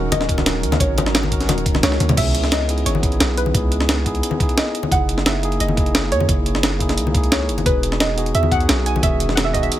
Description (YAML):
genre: liquid drum and bass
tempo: 175 BPM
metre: 4/4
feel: straight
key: C# dorian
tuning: A4 = 440 Hz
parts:
  - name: soft round pluck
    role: melody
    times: 0.0-9.7 s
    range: B4 to G#5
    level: -25 LUFS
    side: right 1 dB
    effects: chorus, digital delay
  - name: mellow tine electric piano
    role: accompaniment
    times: 0.0-9.8 s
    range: D#3 to A#4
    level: -25 LUFS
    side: equal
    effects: digital delay
  - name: shimmering ambient pad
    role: sustained chords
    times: 0.0-2.2 s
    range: D#3 to A#4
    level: -30 LUFS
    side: right 2 dB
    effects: chorus, built-in reverb, sidechain pumping
  - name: long sustained 808-style bass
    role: bass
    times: 0.0-9.7 s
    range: D#1 to F#2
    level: -22 LUFS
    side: equal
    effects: none
  - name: breakbeat sampler-style drum kit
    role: drums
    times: 0.1-9.8 s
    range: crash cymbal, hi-hat, snare drum, toms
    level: -21 LUFS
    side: right 1 dB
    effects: none
  - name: congas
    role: percussion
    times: 0.1-9.0 s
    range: none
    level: -25 LUFS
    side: left 4 dB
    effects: none
  - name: electronic kick drum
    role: drums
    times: 0.3-9.6 s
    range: none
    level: -21 LUFS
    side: equal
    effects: none
room: digital ambience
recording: none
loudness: -16 LUFS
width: side -13 dB against mid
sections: 0.0-2.2 A section; 2.2-9.8 A section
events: drop 0.0-2.2, 2.2-9.8; kick drops out 1.8-2.2; drum fill 1.9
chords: 0.0 D#m7; 0.8 G#9sus4; 2.2 C#m9; 4.9 F#13; 7.7 Emaj9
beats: 0.12 0.46 | 0.80 1.15 1.49 1.83 | 2.17 2.52 2.86 3.20 | 3.54 3.89 4.23 4.57 | 4.92 5.26 5.60 5.95 | 6.29 6.63 6.97 7.32 | 7.66 8.00 8.35 8.69 | 9.03 9.37 9.72